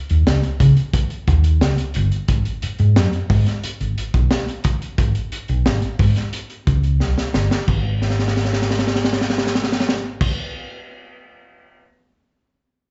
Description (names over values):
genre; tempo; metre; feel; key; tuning
funk; 89 BPM; 4/4; straight; G# minor; A4 = 438 Hz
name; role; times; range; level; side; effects
hollow-body short-scale fingered electric bass; bass; 0.1-10.3 s; G1 to C#3; -20 LUFS; equal; none
crunchy breakbeat drum kit; drums; 0.1-11.8 s; crash cymbal, hi-hat, kick drum, snare drum; -23 LUFS; equal; slapback echo
room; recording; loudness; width
little or no reverb; live gig heard through the venue's PA, club reverb, nothing above 7.9 kHz; -19 LUFS; mono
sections
0.0-2.3 A section; 2.3-7.7 B section; 7.7-10.4 C section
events
drum fill 7.0-7.7, 8.0-10.2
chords
none